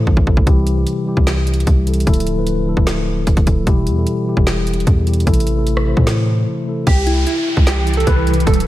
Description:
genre	hip hop, trap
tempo	150 BPM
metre	4/4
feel	half-time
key	C major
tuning	A4 = 442 Hz
part	mellow tine electric piano	accompaniment	0.0-6.9 s	B2 to C5	-19 LUFS	left 2 dB	medium stereo tremolo
part	long sustained 808-style bass	bass	0.0-8.7 s	D1 to A2	-17 LUFS	equal	none
part	trap drum kit	drums	0.1-8.7 s	hi-hat, kick drum, rim click, snare drum	-16 LUFS	equal	none
part	glassy wavetable pluck	melody	6.9-8.6 s	E4 to B4	-19 LUFS	right 1 dB	chorus, ping-pong delay
part	downlifter	sound effects	6.9-8.7 s	none	-25 LUFS	equal	none
room	light reverb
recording	vinyl crackle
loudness	-13 LUFS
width	side -15 dB against mid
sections	0.0-6.9 A section; 6.9-8.7 B section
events	break 0.0-0.5, 6.5-6.9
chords	0.5 C; 2.1 Dmadd9; 3.7 Em; 5.3 Am; 6.9 C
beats	0.07 | 0.47 0.87 1.27 1.67 | 2.07 2.47 2.87 3.27 | 3.67 4.07 4.47 4.87 | 5.27 5.67 6.07 6.47 | 6.87 7.27 7.67 8.07 | 8.47

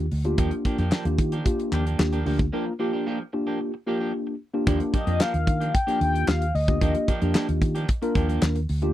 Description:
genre	early-eighties boogie funk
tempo	112 BPM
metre	4/4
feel	straight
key	Eb major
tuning	A4 = 439 Hz
part	mellow tine electric piano	accompaniment	0.0-8.9 s	Bb3 to Bb4	-27 LUFS	left 1 dB	analog chorus
part	clean electric guitar	riff	0.0-8.9 s	F3 to G4	-33 LUFS	right 4 dB	wide subtle chorus
part	vintage muted fingered electric bass	bass	0.0-8.9 s	D2 to Eb3	-25 LUFS	equal	none
part	damped 70s drum kit	drums	0.1-8.9 s	hi-hat, kick drum, snare drum	-25 LUFS	equal	none
part	group handclap	percussion	0.9-8.5 s	none	-33 LUFS	left 4 dB	none
part	mellow horn-like synth lead	melody	5.0-7.4 s	Eb5 to G5	-27 LUFS	left 3 dB	chorus
room	little or no reverb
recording	dry, close 1970s-style studio recording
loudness	-22 LUFS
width	side -13 dB against mid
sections	0.0-4.7 A section; 4.7-8.9 B section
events	break 2.5-4.7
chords	0.0 Ebmaj9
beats	| 0.39 0.92 1.46 1.99 | 2.53 3.06 3.60 4.14 | 4.67 5.21 5.74 6.28 | 6.82 7.35 7.89 8.42

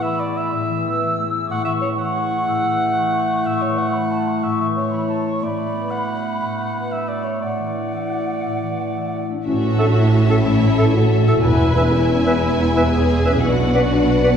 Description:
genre	cinematic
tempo	122 BPM (dotted quarters)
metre	12/8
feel	straight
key	A major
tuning	A4 = 438 Hz
part	clear clarinet	second line	0.0-14.3 s	A3 to B4	-26 LUFS	right 2 dB	none
part	large flute ensemble	second line	0.0-14.3 s	F#5 to E6	-27 LUFS	left 1 dB	none
part	mellow cor anglais	second line	0.0-14.3 s	C#5 to F#5	-25 LUFS	right 1 dB	none
part	concert harp	arpeggios	0.0-14.4 s	A2 to E5	-25 LUFS	left 5 dB	none
part	dark French horn section	sustained chords	9.3-14.4 s	B3 to F#4	-22 LUFS	left 3 dB	none
part	warm symphonic violin section	melody	9.5-14.4 s	E5 to G#5	-29 LUFS	left 3 dB	none
part	warm symphonic violin section	second line	9.5-14.4 s	A4 to E5	-28 LUFS	left 2 dB	none
part	warm symphonic viola section	accompaniment	9.5-14.4 s	E4 to B4	-26 LUFS	equal	none
part	clear trombone section	sustained chords	9.5-14.4 s	E3 to E4	-27 LUFS	right 2 dB	none
part	warm studio cello section	bass	9.5-14.4 s	E2 to B2	-21 LUFS	right 1 dB	none
part	warm symphonic double bass section	bass	9.5-14.4 s	E1 to B1	-20 LUFS	right 2 dB	none
part	timpani	percussion	11.4-11.9 s	E2	-25 LUFS	left 1 dB	none
room	wet scoring stage reverb, RT60 1.6 s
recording	heard from further back in the room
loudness	-16 LUFS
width	side -7 dB against mid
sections	0.0-9.5 A section; 9.5-14.4 B section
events	build-up 0.0-9.5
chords	0.0 E/A; 1.5 C#m/A; 3.5 A; 5.4 Bm/A; 7.4 Dadd9/A; 9.5 A; 11.5 E; 13.4 Bm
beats	0.03 0.52 1.01 | 1.50 1.98 2.47 2.96 | 3.45 3.94 4.44 4.93 | 5.42 5.92 6.41 6.91 | 7.42 7.94 8.45 8.96 | 9.47 9.96 10.46 10.96 | 11.45 11.95 12.44 12.93 | 13.43 13.92

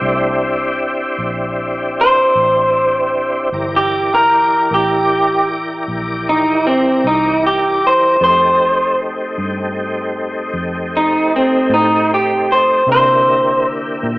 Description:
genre	slow blues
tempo	51 BPM (dotted quarters)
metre	12/8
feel	straight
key	C mixolydian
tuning	A4 = 440 Hz
part	electric guitar through a small old amp	melody	0.0-13.7 s	A3 to C5	-12 LUFS	equal	none
part	tonewheel organ	sustained chords	0.0-14.2 s	D3 to D5	-19 LUFS	equal	chorus vibrato, slow rotary speaker
part	vintage muted fingered electric bass	bass	0.0-14.2 s	G1 to C3	-27 LUFS	equal	none
room	moderate plate reverb, RT60 2.4 s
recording	rough home demo mix, small speaker sound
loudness	-12 LUFS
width	side -21 dB against mid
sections	0.0-14.2 A section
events	clean electric guitar solo 0.0-14.2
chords	0.0 C7; 8.2 F7; 12.9 C7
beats	0.02 1.19 2.37 | 3.54 4.70 5.87 7.04 | 8.21 9.38 10.54 11.71 | 12.87 14.04

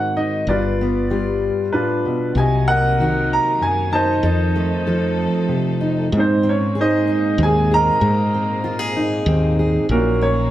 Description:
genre	acoustic folk-pop ballad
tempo	96 BPM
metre	3/4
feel	straight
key	unclear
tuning	A4 = 440 Hz
part	warm concert grand piano	melody	0.0-10.5 s	Bb3 to Bb5	-19 LUFS	right 1 dB	slapback echo, plate reverb
part	fingerpicked steel-string acoustic guitar	accompaniment	0.0-10.5 s	F2 to A4	-21 LUFS	left 1 dB	none
part	woody fretless electric bass	bass	0.5-10.5 s	G1 to Ab2	-20 LUFS	equal	none
part	rich chamber string section	sustained chords	2.4-10.5 s	Bb2 to Bb4	-28 LUFS	right 1 dB	none
room	wet studio reverb, RT60 0.7 s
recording	heard from further back in the room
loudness	-16 LUFS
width	side -13 dB against mid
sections	0.0-6.1 A section; 6.1-10.5 B section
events	none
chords	0.5 G7; 2.4 Cm7b5; 4.2 F7; 6.1 Abadd9; 9.9 Gb/Bb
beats	| 0.48 1.10 1.73 | 2.36 2.98 3.61 | 4.24 4.86 5.49 | 6.12 6.75 7.38 | 8.01 8.63 9.26 | 9.89

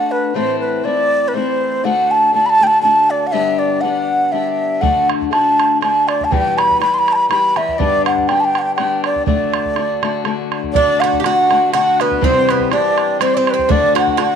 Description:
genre	celtic folk, Celtic waltz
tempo	121 BPM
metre	3/4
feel	swing 54% on 8ths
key	D mixolydian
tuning	A4 = 437 Hz
part	breathy bright baroque flute	melody	0.0-14.4 s	B4 to C6	-14 LUFS	right 1 dB	none
part	picked steel-string acoustic guitar	accompaniment	0.0-14.4 s	E2 to G4	-20 LUFS	left 11 dB	none
part	bodhran	percussion	4.8-14.3 s	none	-22 LUFS	right 6 dB	none
part	Irish bouzouki	second line	10.8-14.4 s	B3 to G4	-21 LUFS	right 10 dB	tape echo
room	moderate echo chamber reverb, RT60 2.1 s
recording	1960s-style stereo with parts hard left and right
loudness	-13 LUFS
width	side -7 dB against mid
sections	0.0-10.8 A section; 10.8-14.4 A section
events	none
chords	0.4 Am; 1.8 D; 3.3 G; 4.8 D; 6.3 Em; 7.8 G; 9.3 D; 12.2 C; 13.7 D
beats	| 0.35 0.85 1.35 | 1.84 2.34 2.84 | 3.33 3.83 4.33 | 4.82 5.32 5.82 | 6.31 6.81 7.30 | 7.79 8.29 8.78 | 9.28 9.77 10.26 | 10.75 11.24 11.74 | 12.23 12.72 13.21 | 13.70 14.18

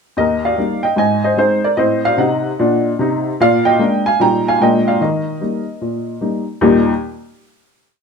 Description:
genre	jazz, stride piano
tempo	149 BPM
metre	4/4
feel	swing 65% on 8ths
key	Eb major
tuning	A4 = 440 Hz
part	warm upright piano	solo	0.2-6.9 s	Eb2 to Bb5	-13 LUFS	equal	none
room	moderate club reverb, RT60 0.8 s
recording	none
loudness	-13 LUFS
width	side -5 dB against mid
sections	0.2-6.6 A section; 6.6-8.0 final chord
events	none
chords	0.2 Eb; 1.0 Ab; 1.8 Adim7; 3.4 Bb7; 4.2 Eb/Bb; 4.6 Bb7; 5.0 Eb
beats	| 0.16 0.56 0.97 1.37 | 1.77 2.17 2.58 2.98 | 3.38 3.79 4.19 4.59 | 4.99 5.40 5.80 6.20 | 6.60

